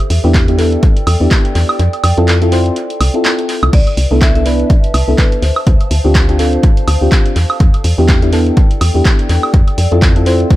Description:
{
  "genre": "deep house",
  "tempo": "124 BPM",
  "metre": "4/4",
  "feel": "swing 57% on 16ths",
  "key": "unclear",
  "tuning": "A4 = 440 Hz",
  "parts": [
    { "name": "punchy analog drum machine", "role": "drums", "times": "0.0-10.6 s", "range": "crash cymbal, handclaps, hi-hat, woodblock", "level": "-19 LUFS", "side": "right 1 dB", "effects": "analog delay" },
    { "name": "warbly tape-like pad", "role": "texture", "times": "0.0-10.6 s", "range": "G4 to A5", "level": "-23 LUFS", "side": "right 1 dB", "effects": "chorus, built-in reverb, sidechain pumping" },
    { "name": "woody FM bass", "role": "bass", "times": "0.1-10.4 s", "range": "C2 to F2", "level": "-13 LUFS", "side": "equal", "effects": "sidechain pumping" },
    { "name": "mellow FM electric piano", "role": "stabs", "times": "0.2-10.5 s", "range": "B3 to C5", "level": "-16 LUFS", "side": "left 1 dB", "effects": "chorus, sidechain pumping, analog delay" },
    { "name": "electronic kick drum", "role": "drums", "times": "0.3-10.6 s", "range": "none", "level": "-10 LUFS", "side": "equal", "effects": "none" },
    { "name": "marimba with medium hard mallets", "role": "melody", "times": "3.7-6.1 s", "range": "B4 to E5", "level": "-24 LUFS", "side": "left 2 dB", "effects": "dub echo" }
  ],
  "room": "little or no reverb",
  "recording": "echo-heavy mix",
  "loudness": "-9 LUFS",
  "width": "side -16 dB against mid",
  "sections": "0.0-10.6 A section",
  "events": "kick drops out 1.8-3.7",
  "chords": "0.0 Em7; 1.8 Fmaj7; 3.7 Cmaj13; 5.4 G7sus4/D; 7.4 Em7; 9.5 Fmaj7"
}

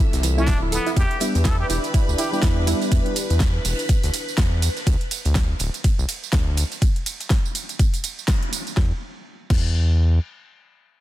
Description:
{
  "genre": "deep house",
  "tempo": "123 BPM",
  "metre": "4/4",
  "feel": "swing 58% on 16ths",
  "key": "E phrygian",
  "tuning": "A4 = 440 Hz",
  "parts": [
    { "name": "dark analog pad", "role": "sustained chords", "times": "0.0-4.8 s", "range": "F3 to B4", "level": "-32 LUFS", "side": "left 1 dB", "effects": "chorus, sidechain pumping" },
    { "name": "soft round pluck", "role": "arpeggios", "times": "0.0-2.8 s", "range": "E3 to A4", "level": "-30 LUFS", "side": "right 6 dB", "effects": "chorus, sidechain pumping, tape echo" },
    { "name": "deep house drum kit", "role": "drums", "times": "0.0-9.7 s", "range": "crash cymbal, hi-hat, ride cymbal, snare drum, tambourine", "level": "-28 LUFS", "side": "right 2 dB", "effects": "none" },
    { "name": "soft string machine", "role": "texture", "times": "0.0-4.9 s", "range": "B4 to E6", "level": "-32 LUFS", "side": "left 1 dB", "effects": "ensemble chorus" },
    { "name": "round analog bass", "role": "bass", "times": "0.1-10.2 s", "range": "D1 to E2", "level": "-20 LUFS", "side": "equal", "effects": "sidechain pumping" },
    { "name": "oversized low-tuned drum kit", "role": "drums", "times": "0.1-6.8 s", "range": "hi-hat, snare drum", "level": "-36 LUFS", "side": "right 3 dB", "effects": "high-pass filter on hats, high-pass filter on snare, high-pass filter on room" },
    { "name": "trumpet with plunger mute", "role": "melody", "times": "0.4-2.4 s", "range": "B3 to A4", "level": "-29 LUFS", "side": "equal", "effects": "tape echo" },
    { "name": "mellow FM electric piano", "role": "stabs", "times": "0.4-3.1 s", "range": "F3 to E4", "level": "-28 LUFS", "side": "equal", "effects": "chorus, sidechain pumping, tape echo" },
    { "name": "electronic kick drum", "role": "drums", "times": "0.5-9.7 s", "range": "none", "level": "-20 LUFS", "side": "equal", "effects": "none" }
  ],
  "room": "digital ambience",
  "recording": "dense, heavily limited modern master",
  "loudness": "-19 LUFS",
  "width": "side -14 dB against mid",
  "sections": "0.0-8.8 A section; 8.8-11.0 B section",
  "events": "drop 0.0-8.8; band accent 8.3",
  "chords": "0.0 Dm7; 1.0 Em7; 4.9 N.C."
}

